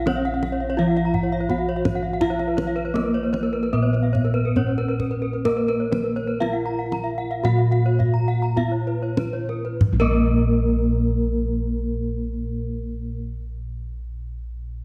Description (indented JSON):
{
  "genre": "Balinese gamelan",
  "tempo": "46-84 BPM",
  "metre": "4/4",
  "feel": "straight",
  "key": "Bb pelog",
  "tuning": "A4 = 439 Hz",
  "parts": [
    { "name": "gamelan-type bronze metallophone", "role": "melody", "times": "0.0-13.2 s", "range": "Bb3 to Gb4-40c", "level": "-28 LUFS", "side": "equal", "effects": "none" },
    { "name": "gamelan-type bronze metallophone", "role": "arpeggios", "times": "0.0-13.2 s", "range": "Bb4 to Bb5", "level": "-34 LUFS", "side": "equal", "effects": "none" },
    { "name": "gamelan-type bossed gongs", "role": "bass", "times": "0.0-13.1 s", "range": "Bb1 to Bb4", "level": "-26 LUFS", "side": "equal", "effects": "none" },
    { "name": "gamelan-type bronze metallophone", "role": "arpeggios", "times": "0.1-13.2 s", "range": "Bb4 to Bb5", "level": "-32 LUFS", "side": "equal", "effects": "none" },
    { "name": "kendang", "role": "percussion", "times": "0.1-10.4 s", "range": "none", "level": "-30 LUFS", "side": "equal", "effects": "none" }
  ],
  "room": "moderate scoring stage reverb, RT60 1.8 s",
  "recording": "dark, warm production",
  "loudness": "-22 LUFS",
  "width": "mono",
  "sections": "0.0-9.8 A section; 9.8-14.8 B section",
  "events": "slowing down 2.2-9.8",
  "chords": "none",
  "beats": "0.06 0.78 1.49 | 2.20 2.94 3.72 4.55 | 5.44 6.40 7.43 8.56 | 9.80 11.10 12.40"
}